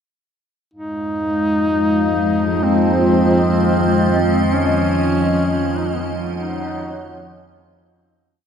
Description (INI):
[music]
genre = dark ambient drone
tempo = 63 BPM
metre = 4/4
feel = straight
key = F minor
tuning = A4 = 442 Hz
[part]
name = warm duduk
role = melody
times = 0.7-7.3 s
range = B3 to D#4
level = -20 LUFS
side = equal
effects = diffuse ambient delay
[part]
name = dark analog pad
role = sustained chords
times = 1.0-8.3 s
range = E#3 to F#5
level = -20 LUFS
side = equal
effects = chorus
[part]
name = overtone-sweeping drone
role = drone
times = 1.3-8.4 s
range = F2 to F3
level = -21 LUFS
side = equal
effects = chorus, built-in reverb
[part]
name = icy glass pad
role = texture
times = 2.2-8.3 s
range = Eb5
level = -34 LUFS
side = right 1 dB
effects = chorus, built-in reverb
[part]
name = gamelan-type bronze metallophone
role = arpeggios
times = 2.2-8.5 s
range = Eb3 to Bb3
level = -31 LUFS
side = left 4 dB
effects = none
[sound]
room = wet huge ambient reverb, RT60 8.3 s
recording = none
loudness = -15 LUFS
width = side -7 dB against mid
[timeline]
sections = 0.7-8.3 A section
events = fade-in on ambient pad 0.7-8.3; fade-out 4.5-8.3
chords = 0.7 Fm7; 4.5 Bmaj9#11/E# (rootless)